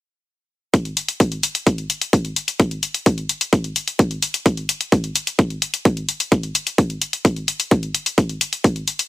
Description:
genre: EDM, festival progressive house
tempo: 129 BPM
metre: 4/4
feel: straight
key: none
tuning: none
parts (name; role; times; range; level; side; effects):
- electronic hi-hat; drums; 0.7-9.1 s; none; -21 LUFS; left 3 dB; none
- electronic kick drum; drums; 0.7-8.7 s; none; -17 LUFS; equal; high-pass filter on kick
room: digital ambience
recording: none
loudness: -18 LUFS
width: side -16 dB against mid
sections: 0.7-9.1 A section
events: none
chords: none

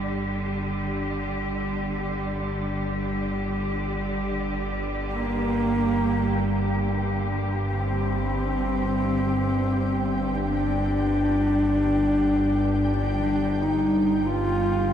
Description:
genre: dark ambient drone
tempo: free time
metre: none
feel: none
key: unclear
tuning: A4 = 440 Hz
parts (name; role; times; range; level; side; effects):
- rich studio cello section; sustained chords; 0.0-14.9 s; D3 to G4; -31 LUFS; equal; none
- analog drone; drone; 0.0-14.9 s; G1 to G2; -27 LUFS; equal; chorus
- flickering grainy texture; texture; 0.0-14.9 s; D5 to G5; -36 LUFS; equal; built-in reverb
- dark horsehead fiddle; melody; 5.1-14.9 s; Bb3 to F4; -24 LUFS; equal; tape echo
room: wet cathedral reverb, RT60 6.7 s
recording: dark, warm production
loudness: -22 LUFS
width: side -9 dB against mid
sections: 0.0-14.9 A section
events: fade-in on synth drone 0.0-14.9; fade-in on synth texture 0.0-14.9; fade-out on cello section 0.0-14.9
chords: 0.0 G5

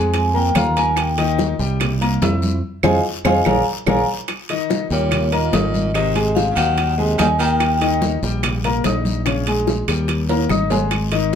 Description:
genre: Afro-Cuban jazz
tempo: 145 BPM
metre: 4/4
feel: straight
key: Eb mixolydian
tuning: A4 = 445 Hz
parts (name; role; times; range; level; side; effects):
- warm grand piano; accompaniment; 0.0-11.4 s; Db3 to F6; -22 LUFS; left 3 dB; none
- modern bright fingered electric bass; bass; 0.0-11.4 s; Ab1 to F2; -21 LUFS; equal; none
- bongos; percussion; 0.1-11.1 s; none; -26 LUFS; left 5 dB; none
- congas; percussion; 0.1-11.3 s; none; -26 LUFS; left 1 dB; none
- guiro; percussion; 0.1-11.4 s; none; -34 LUFS; left 6 dB; none
- timbales; percussion; 0.1-11.4 s; none; -26 LUFS; right 5 dB; none
- vibraphone with medium hard mallets; melody; 0.2-8.0 s; Db5 to Bb5; -21 LUFS; right 1 dB; none
- claves; percussion; 0.6-11.1 s; none; -30 LUFS; right 6 dB; none
- bright baritone saxophone; second line; 4.9-8.0 s; Bb2 to Eb3; -26 LUFS; right 5 dB; none
room: moderate club reverb, RT60 0.8 s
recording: heard from further back in the room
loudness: -16 LUFS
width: side -8 dB against mid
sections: 0.0-4.3 A section; 4.3-11.4 B section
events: vibraphone solo 0.0-4.3; band accent 2.6-4.3; drum fill 3.5-4.3, 10.3-10.9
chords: 0.0 Bb5; 1.0 Eb; 1.8 C7; 2.6 Fm7; 3.5 Bb7; 4.3 Eb7; 5.9 Ab9; 7.6 Eb; 9.3 Bbm7; 10.1 Eb

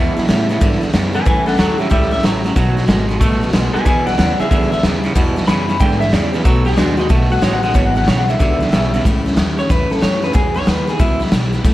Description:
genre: rockabilly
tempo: 185 BPM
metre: 4/4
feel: swing 65% on 8ths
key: E major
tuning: A4 = 440 Hz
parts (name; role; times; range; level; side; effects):
- electric guitar through a small old amp; melody; 0.0-11.2 s; D4 to B5; -20 LUFS; left 1 dB; tape echo
- picked steel-string acoustic guitar; accompaniment; 0.0-11.7 s; E2 to F#4; -23 LUFS; left 2 dB; none
- twangy electric guitar; riff; 0.0-9.0 s; E2 to A3; -21 LUFS; right 3 dB; harmonic tremolo
- upright bass; bass; 0.0-11.7 s; G#1 to A2; -20 LUFS; equal; none
- raw garage drum kit; drums; 0.2-11.7 s; hi-hat, kick drum, snare drum; -16 LUFS; equal; none
room: light reverb, small room ambience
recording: none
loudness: -13 LUFS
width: side -15 dB against mid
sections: 0.0-9.0 A section; 9.0-11.7 B section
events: clean electric guitar solo 0.0-9.0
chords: 0.0 E; 1.3 A; 2.6 B7; 3.9 E; 6.5 B7; 7.8 E; 9.0 A; 10.3 E

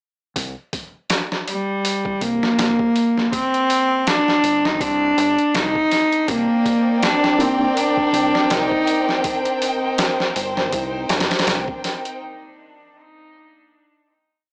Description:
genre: trip hop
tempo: 81 BPM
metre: 4/4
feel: swing 56% on 16ths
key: C minor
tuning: A4 = 440 Hz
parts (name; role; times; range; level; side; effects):
- deep dub fingered electric bass; bass; 0.4-11.7 s; G1 to C2; -32 LUFS; equal; tube saturation
- trip hop sampler-style drum kit; drums; 0.4-12.2 s; hi-hat, kick drum, snare drum; -25 LUFS; equal; none
- rich cello; melody; 1.5-9.3 s; G3 to Eb4; -21 LUFS; equal; tape echo
- warm studio violin section; sustained chords; 6.3-12.2 s; C4 to G5; -25 LUFS; equal; vintage 12-bit sampler grit
- dark upright piano; accompaniment; 7.4-7.6 s; C3 to D4; -24 LUFS; equal; tremolo
room: small room reverb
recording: dry, gritty hardware recording, small speaker sound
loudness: -19 LUFS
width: mono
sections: 0.4-12.2 groove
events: none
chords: 0.4 C7sus2

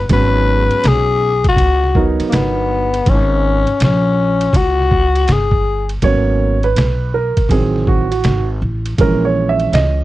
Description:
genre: hip hop, jazz-hop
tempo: 81 BPM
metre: 4/4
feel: swing 64% on 16ths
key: G# minor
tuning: A4 = 440 Hz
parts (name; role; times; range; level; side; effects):
- growling tenor saxophone; melody; 0.0-5.9 s; A#3 to B4; -16 LUFS; left 4 dB; none
- upright bass; bass; 0.0-10.0 s; G1 to C#2; -17 LUFS; equal; none
- dark grand piano; accompaniment; 0.1-10.0 s; Eb3 to E5; -17 LUFS; right 4 dB; none
- trip hop sampler-style drum kit; drums; 0.1-10.0 s; hi-hat, kick drum, ride cymbal, snare drum; -16 LUFS; equal; none
room: little or no reverb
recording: dry, close 1970s-style studio recording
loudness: -12 LUFS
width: side -16 dB against mid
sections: 0.0-6.0 A section; 6.0-10.0 B section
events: grand piano solo 6.0-10.0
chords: 0.1 G#m11; 7.5 Adim7; 9.0 A#m7b5

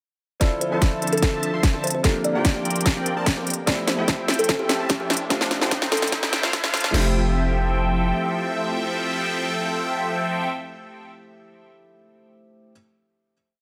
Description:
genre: future bass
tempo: 147 BPM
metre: 4/4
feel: half-time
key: F major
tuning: A4 = 440 Hz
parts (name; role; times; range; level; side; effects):
- kalimba; melody; 0.4-6.1 s; G4 to D5; -30 LUFS; equal; sidechain pumping, dub echo
- felt-muted upright piano; accompaniment; 0.4-12.7 s; A3 to A4; -34 LUFS; equal; sidechain pumping, digital delay
- airy breathy pad; sustained chords; 0.4-10.5 s; D3 to E5; -35 LUFS; equal; chorus, sidechain pumping
- big bright polysynth; riff; 0.4-10.5 s; F3 to C6; -28 LUFS; equal; chorus, phaser, sidechain pumping, digital delay
- warm 808-style bass; bass; 0.4-8.1 s; F1 to F2; -28 LUFS; equal; sidechain pumping, high-pass filter
- trap drum kit; drums; 0.4-7.0 s; crash cymbal, kick drum, snare drum; -24 LUFS; equal; none
- trap drum kit; drums; 0.4-6.9 s; hi-hat, snare drum; -26 LUFS; equal; none
- riser; sound effects; 3.0-6.9 s; none; -36 LUFS; equal; none
room: moderate digital room reverb, RT60 1.0 s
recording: high-pass filter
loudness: -22 LUFS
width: mono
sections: 0.4-6.9 build; 6.9-10.2 final chord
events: build-up 0.4-6.9; drum fill 0.4-6.9; filter sweep on analog polysynth 0.4-6.9; filter sweep on analog synth pad 0.4-6.9; filter sweep 0.4-6.9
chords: 0.4 Dm9/F; 2.0 C7sus4/F; 3.7 Fmaj9; 5.3 G9sus4/F; 6.9 Fmaj9

